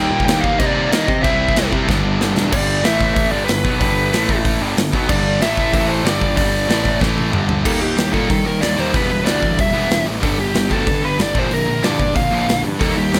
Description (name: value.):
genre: punk rock.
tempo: 187 BPM.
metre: 4/4.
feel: straight.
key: unclear.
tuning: A4 = 441 Hz.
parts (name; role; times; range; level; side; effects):
biting lead guitar; melody; 0.0-13.2 s; G4 to G5; -22 LUFS; equal; overdrive.
distorted electric guitar; riff; 0.0-13.2 s; G2 to E4; -26 LUFS; equal; overdrive.
sludgy distorted guitar; riff; 0.0-13.2 s; G2 to E4; -27 LUFS; equal; none.
thick fuzz guitar; riff; 0.0-2.5, 5.1-13.2 s; G2 to E4; -28 LUFS; equal; none.
fuzz picked electric bass; bass; 0.0-13.2 s; E1 to Eb3; -25 LUFS; equal; overdrive.
big rock drum kit; drums; 0.2-13.2 s; crash cymbal, hi-hat, kick drum, snare drum, toms; -22 LUFS; equal; none.
room: light reverb.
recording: none.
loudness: -17 LUFS.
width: mono.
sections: 0.0-2.5 A section; 2.5-7.7 B section; 7.7-13.2 C section.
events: drum fill 1.9-2.5, 7.0-7.7.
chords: 0.0 Eb; 1.2 C; 1.9 G; 2.5 G5; 2.8 A5; 3.3 G; 4.1 A5; 4.6 G; 5.4 A5; 6.0 G5; 6.7 A5; 7.3 G5; 7.7 Eb; 8.9 Em; 10.2 G; 11.4 Bb.